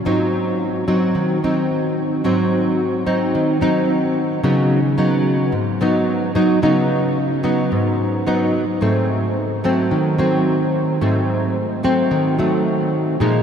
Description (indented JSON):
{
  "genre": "bossa nova",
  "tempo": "109 BPM",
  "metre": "4/4",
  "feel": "straight",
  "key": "unclear",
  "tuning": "A4 = 440 Hz",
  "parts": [
    { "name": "nylon-string guitar", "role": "solo", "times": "0.0-13.4 s", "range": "Ab2 to Eb4", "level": "-16 LUFS", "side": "equal", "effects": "analog chorus, analog delay" }
  ],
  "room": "wet huge ambient reverb, RT60 7.3 s",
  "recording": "dreamy mix soaked in reverb",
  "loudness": "-16 LUFS",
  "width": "side -7 dB against mid",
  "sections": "0.0-13.4 A section",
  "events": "none",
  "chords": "0.0 Ab7; 4.4 Db9sus4; 8.8 Ab7b9"
}